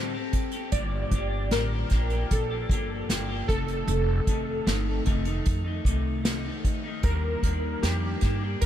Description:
indie pop, bedroom pop; 76 BPM; 4/4; straight; G minor; A4 = 442 Hz
electric guitar through a small old amp; accompaniment; 0.0-8.7 s; F2 to A4; -32 LUFS; left 3 dB; wide subtle chorus, warbly pitch drift
upright bass; bass; 0.0-8.7 s; F1 to A2; -28 LUFS; equal
unplugged drum kit; drums; 0.3-8.7 s; hi-hat, kick drum, snare drum; -28 LUFS; equal
warbly lo-fi synth keys; melody; 0.7-8.7 s; G4 to D5; -33 LUFS; right 1 dB; ensemble chorus, ping-pong delay
light reverb, studio reverb; -24 LUFS; side -11 dB against mid
0.0-8.7 A section
0.0 D7sus4; 0.7 Gm7; 3.5 F7; 7.0 Ebmaj7

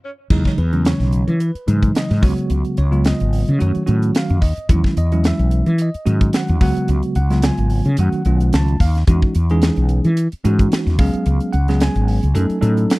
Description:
electric jazz fusion; 110 BPM; 4/4; swing 55% on 16ths; A4 = 442 Hz
bell-like tine electric piano; accompaniment; 0.3-13.0 s; C#3 to A5; -20 LUFS; right 1 dB; fast stereo tremolo
mellow fretless electric bass; bass; 0.3-12.8 s; Ab1 to E3; -16 LUFS; equal
crisp fusion drum kit; drums; 0.3-13.0 s; crash cymbal, hi-hat, kick drum, snare drum; -17 LUFS; equal
little or no reverb; dry, close 1970s-style studio recording; -14 LUFS; side -22 dB against mid
0.3-13.0 A section
drum fill 0.0-0.3; band accent 0.0-0.3
0.3 Emaj13; 2.2 Db7sus4; 3.6 Gbm6; 4.7 Emaj13; 6.6 Db7sus4; 8.0 Gbm6; 9.1 Emaj13; 11.0 Db7sus4; 12.4 Gbm6

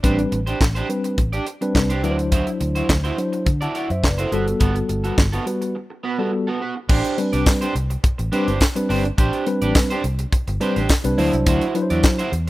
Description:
early-eighties boogie funk; 105 BPM; 4/4; straight; A dorian; A4 = 439 Hz
mellow tine electric piano; accompaniment; 0.0-12.2 s; F#3 to A5; -22 LUFS; left 1 dB; medium stereo tremolo
electric guitar at the edge of break-up; riff; 0.0-12.5 s; B3 to D5; -26 LUFS; right 4 dB; analog chorus
vintage muted fingered electric bass; bass; 0.0-12.5 s; F#1 to D3; -23 LUFS; equal
tight funk drum kit; drums; 0.0-12.5 s; crash cymbal, handclaps, hi-hat, kick drum, snare drum; -19 LUFS; equal
tambourine; percussion; 7.5-12.2 s; -33 LUFS; left 4 dB
small room ambience; rough home demo mix; -18 LUFS; side -17 dB against mid
0.0-6.9 A section; 6.9-12.5 B section
break 5.8-6.9
0.0 Am11; 2.0 D9; 4.3 Gmaj9; 6.9 Am11 (rootless); 11.2 D9

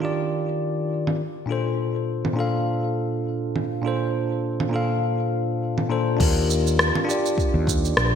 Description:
sunset chillout; 102 BPM; 4/4; swing 56% on 16ths; Eb lydian; A4 = 440 Hz
bell-like tine electric piano; accompaniment; 0.0-8.2 s; Bb2 to F5; -23 LUFS; moving between left 5 dB and right 5 dB; auto-pan, digital delay
deep house drum kit; drums; 1.1-8.1 s; congas, crash cymbal, rim click, shaker; -24 LUFS; right 1 dB; low-pass filter on perc, low-pass filter on snare, low-pass filter on cymbals, low-pass filter on room, gated reverb
fretless electric bass; bass; 6.2-8.2 s; Bb1 to Eb2; -22 LUFS; equal
electronic kick drum; drums; 6.2-7.8 s; -24 LUFS; equal
moderate lush hall reverb, RT60 1.7 s; bright 1980s-style digital production; -21 LUFS; side -8 dB against mid
0.0-6.2 A section; 6.2-8.2 B section
0.0 Ebmaj9; 1.2 Bbmaj9; 6.2 Ebmaj9

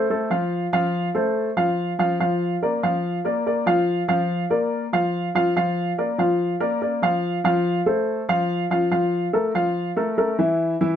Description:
jazz; 143 BPM; 4/4; straight; A4 = 440 Hz
warm upright piano; solo; 0.0-11.0 s; E3 to F5; -20 LUFS; equal
light reverb; close, detailed microphones; -20 LUFS; side -9 dB against mid
0.0-11.0 A section
0.0 F; 2.2 Bb/F; 7.2 F; 8.9 Bb5

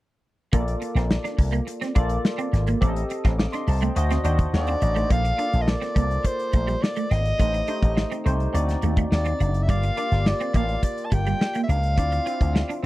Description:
polished 1980s jazz-funk pop; 105 BPM; 4/4; straight; Bb major; A4 = 440 Hz
barky tine electric piano; accompaniment; 0.5-12.9 s; A3 to D6; -30 LUFS; left 1 dB; overdrive, analog chorus
electric guitar at the edge of break-up; riff; 0.5-12.8 s; G3 to F4; -30 LUFS; right 5 dB; ensemble chorus
slap bass with an envelope filter; bass; 0.5-12.9 s; F#1 to Eb2; -22 LUFS; equal
modern studio drum kit; drums; 0.5-12.8 s; hi-hat, kick drum, snare drum; -23 LUFS; equal
warm soprano saxophone; melody; 4.6-12.8 s; C5 to A5; -27 LUFS; equal
little or no reverb; dry, close 1970s-style studio recording; -20 LUFS; side -17 dB against mid
0.5-5.1 A section; 5.1-12.9 B section
0.5 Bbmaj7; 2.8 Am7b5; 4.0 D7b9; 5.1 Bbmaj7; 7.4 Am7b5; 8.5 D7b9; 9.7 Gm7; 12.0 Dm9

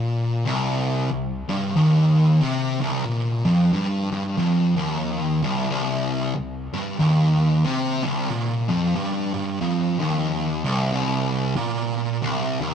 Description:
metal; 92 BPM; 4/4; swing 59% on 8ths; C minor; A4 = 439 Hz
fuzz guitar; solo; 0.0-12.7 s; C2 to C3; -20 LUFS; equal; distortion, analog delay
wet studio reverb, RT60 0.6 s; rough rehearsal-room recording; -20 LUFS; side -8 dB against mid
0.0-10.9 A section; 10.9-12.7 B section

